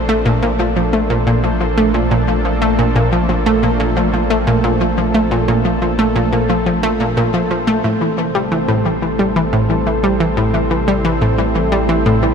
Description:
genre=ambient, sequencer-driven space music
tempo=89 BPM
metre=4/4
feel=straight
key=unclear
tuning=A4 = 440 Hz
part: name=lush unison pad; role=sustained chords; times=0.0-12.3 s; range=C3 to A4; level=-20 LUFS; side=equal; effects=chorus
part: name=analog pluck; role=riff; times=0.0-12.3 s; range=A2 to A3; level=-15 LUFS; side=equal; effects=chorus, ping-pong delay
part: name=warm sub bass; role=bass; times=0.0-12.3 s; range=A1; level=-22 LUFS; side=equal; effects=none
part: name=bubbling stepped-filter texture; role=texture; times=0.0-12.3 s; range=C4 to C5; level=-26 LUFS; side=right 1 dB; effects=chorus, built-in reverb
room=moderate huge ambient reverb, RT60 7.3 s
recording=none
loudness=-13 LUFS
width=side -6 dB against mid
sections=0.0-12.3 A section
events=fade-in on synth texture 0.0-12.3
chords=0.0 Bbmaj7/A; 7.8 Am7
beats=0.43 1.10 1.77 | 2.45 3.12 3.80 4.47 | 5.15 5.82 6.49 7.17 | 7.84 8.52 9.19 9.87 | 10.54 11.21 11.89

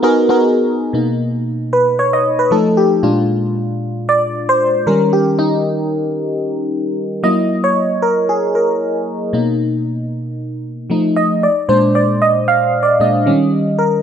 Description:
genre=pop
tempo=114 BPM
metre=4/4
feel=swing 54% on 16ths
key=B major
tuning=A4 = 440 Hz
part: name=FM electric piano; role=solo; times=0.0-14.0 s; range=A#2 to E#5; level=-13 LUFS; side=equal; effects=analog chorus
room=light reverb, digital ambience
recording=dark, warm production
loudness=-13 LUFS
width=side -8 dB against mid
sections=0.9-14.0 A section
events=FM electric piano solo 0.9-14.0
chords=0.0 G#m9; 0.9 Bmaj7; 2.5 F9; 3.0 A#7; 4.9 D#7; 7.2 F#7; 9.3 Bmaj7; 10.9 F7; 11.4 A#7; 13.3 D#7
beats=0.42 | 0.94 1.47 1.99 2.52 | 3.04 3.56 4.09 4.61 | 5.14 5.66 6.19 6.71 | 7.23 7.76 8.28 8.81 | 9.33 9.86 10.38 10.90 | 11.43 11.95 12.48 13.00 | 13.53

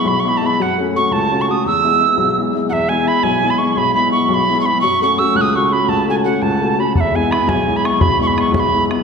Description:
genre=celtic folk, Celtic jig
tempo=113 BPM (dotted quarters)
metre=6/8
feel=straight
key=E major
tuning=A4 = 440 Hz
part: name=mellow wooden whistle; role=melody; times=0.0-8.8 s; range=E5 to F#6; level=-16 LUFS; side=right 3 dB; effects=none
part: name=warm upright piano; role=accompaniment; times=0.0-9.0 s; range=B1 to F#4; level=-17 LUFS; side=left 2 dB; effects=none
part: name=bodhran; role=percussion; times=7.0-9.0 s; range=none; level=-20 LUFS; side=equal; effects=none
room=wet scoring stage reverb, RT60 1.7 s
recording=recorded in a church or concert hall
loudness=-13 LUFS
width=side -5 dB against mid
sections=0.0-2.7 A section; 2.7-9.0 A section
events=none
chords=0.0 E; 0.6 F#m; 1.6 E; 4.8 F#m; 6.9 E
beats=0.06 | 0.59 1.12 | 1.65 2.18 | 2.71 3.24 | 3.77 4.30 | 4.83 5.36 | 5.89 6.42 | 6.95 7.48 | 8.01 8.54

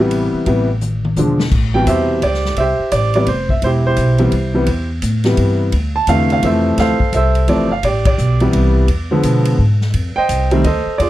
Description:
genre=jazz piano trio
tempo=171 BPM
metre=3/4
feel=swing 63% on 8ths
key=A minor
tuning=A4 = 440 Hz
part: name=clear grand piano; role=melody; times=0.0-11.1 s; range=B2 to A5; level=-15 LUFS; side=equal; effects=none
part: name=upright bass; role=bass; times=0.0-11.1 s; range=E1 to B2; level=-17 LUFS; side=equal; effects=none
part: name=swinging big-band drum kit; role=drums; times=0.1-11.1 s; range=crash cymbal, hi-hat, kick drum, ride cymbal, snare drum, toms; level=-23 LUFS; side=left 1 dB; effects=none
room=light reverb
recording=dark, warm production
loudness=-13 LUFS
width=side -15 dB against mid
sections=0.0-1.5 A section; 1.5-11.1 A section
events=drum fill 0.8-1.5; band accent 8.0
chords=0.0 Am7; 1.2 E7b9; 1.5 Am7; 5.7 Dm7; 7.8 Am7; 8.9 E7b9; 9.9 F7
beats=0.12 | 0.47 0.82 1.17 | 1.52 1.87 2.22 | 2.57 2.92 3.27 | 3.62 3.97 4.32 | 4.67 5.02 5.38 | 5.72 6.08 6.43 | 6.78 7.13 7.48 | 7.83 8.18 8.53 | 8.88 9.23 9.59 | 9.94 10.29 10.64 | 10.99

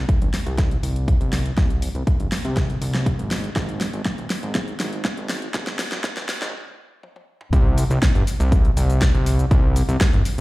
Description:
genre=nu-disco, nu disco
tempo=121 BPM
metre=4/4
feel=straight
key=C minor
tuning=A4 = 440 Hz
part: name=fat analog bass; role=bass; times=0.0-10.4 s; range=Eb1 to C2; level=-22 LUFS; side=equal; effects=none
part: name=electronic kick drum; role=drums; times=0.1-10.1 s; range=none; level=-19 LUFS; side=equal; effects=none
part: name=pop drum kit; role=drums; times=0.1-10.4 s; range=hi-hat, shaker, snare drum, toms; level=-26 LUFS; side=equal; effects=none
room=digital ambience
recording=played on a big sound system in a bare room, large studio reverb, high-pass filter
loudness=-18 LUFS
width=side -19 dB against mid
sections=0.0-7.5 A section; 7.5-10.4 B section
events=build-up 0.0-7.5; drum fill 0.0-6.5, 7.0-7.5; filter sweep 0.0-7.5; stop 6.5-7.5; drop 7.5-10.4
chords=none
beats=0.09 0.58 1.08 | 1.58 2.07 2.57 3.06 | 3.56 4.06 4.55 5.05 | 5.54 6.04 6.54 7.03 | 7.53 8.02 8.52 9.02 | 9.51 10.01

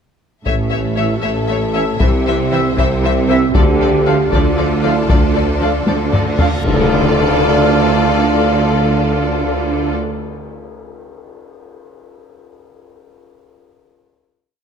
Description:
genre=cinematic, epic orchestral film score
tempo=78 BPM (dotted quarters)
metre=6/8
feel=straight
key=D minor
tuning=A4 = 440 Hz
part: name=mellow French horn section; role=sustained chords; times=0.4-9.9 s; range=C4 to A4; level=-22 LUFS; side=left 3 dB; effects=none
part: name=warm symphonic violin section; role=melody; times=0.5-9.9 s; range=D5 to E5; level=-23 LUFS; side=left 8 dB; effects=none
part: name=warm symphonic violin section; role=second line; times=0.5-9.9 s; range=A4 to C#5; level=-26 LUFS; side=left 4 dB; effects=none
part: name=rich symphonic viola section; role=accompaniment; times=0.5-9.9 s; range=E3 to F4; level=-26 LUFS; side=right 1 dB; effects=none
part: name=rich studio string section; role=sustained chords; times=0.5-9.9 s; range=C4 to E5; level=-26 LUFS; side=left 2 dB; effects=none
part: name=rich symphonic cello section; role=bass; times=0.5-9.9 s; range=A2 to D3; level=-21 LUFS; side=right 3 dB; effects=none
part: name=warm symphonic double bass section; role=bass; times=0.5-9.9 s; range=A1 to D2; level=-21 LUFS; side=right 3 dB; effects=none
part: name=warm tuba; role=bass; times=0.5-9.9 s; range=A1 to D2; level=-20 LUFS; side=right 4 dB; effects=none
part: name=solo taiko drums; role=drums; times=0.5-6.6 s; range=none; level=-17 LUFS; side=left 1 dB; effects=none
part: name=warm trombone section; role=sustained chords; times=1.0-9.9 s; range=D3 to C#4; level=-26 LUFS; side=right 7 dB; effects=none
part: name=mellow trumpet section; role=stabs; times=1.0-9.9 s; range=E5 to F5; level=-24 LUFS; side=right 3 dB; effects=none
part: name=cymbal swell and tam-tam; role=percussion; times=3.5-8.7 s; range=none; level=-24 LUFS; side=left 5 dB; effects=none
part: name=reverse cymbal and impact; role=sound effects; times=6.4-8.2 s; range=none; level=-27 LUFS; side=left 1 dB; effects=none
room=moderate scoring stage reverb, RT60 1.9 s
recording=none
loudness=-12 LUFS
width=side -7 dB against mid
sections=0.5-6.6 theme; 6.6-9.7 final chord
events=drum fill 5.9-6.6; reverse cymbal 6.4; band accent 6.6-7.2; impact 6.6-8.2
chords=0.5 A; 2.0 C; 3.6 Dm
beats=| 0.46 1.23 | 2.01 2.78 | 3.55 4.33 | 5.10 5.87 | 6.64 7.42 | 8.19 8.96

